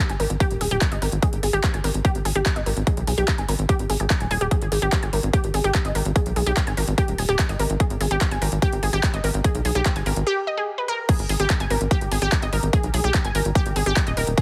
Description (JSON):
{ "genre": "psychedelic trance", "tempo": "146 BPM", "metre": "4/4", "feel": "straight", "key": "G# harmonic minor", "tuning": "A4 = 440 Hz", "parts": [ { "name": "unison pluck", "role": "riff", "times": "0.1-14.4 s", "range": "G4 to G#5", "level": "-28 LUFS", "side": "equal", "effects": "sidechain pumping, dub echo" }, { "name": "tight sequencer bass", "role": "bass", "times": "0.1-14.3 s", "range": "D#1 to B1", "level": "-26 LUFS", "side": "equal", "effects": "tube saturation" }, { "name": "big-room dance drum kit", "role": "drums", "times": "0.1-14.4 s", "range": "crash cymbal, handclaps, hi-hat", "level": "-31 LUFS", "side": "equal", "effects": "overdrive" }, { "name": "electronic kick drum", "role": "drums", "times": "0.4-14.4 s", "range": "none", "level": "-25 LUFS", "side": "equal", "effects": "overdrive" } ], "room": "little or no reverb", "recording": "heavily compressed radio sound, multiband compression", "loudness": "-22 LUFS", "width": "mono", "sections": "0.0-11.1 A section; 11.1-14.4 B section", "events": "drop 11.1-14.4", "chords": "0.0 G#5" }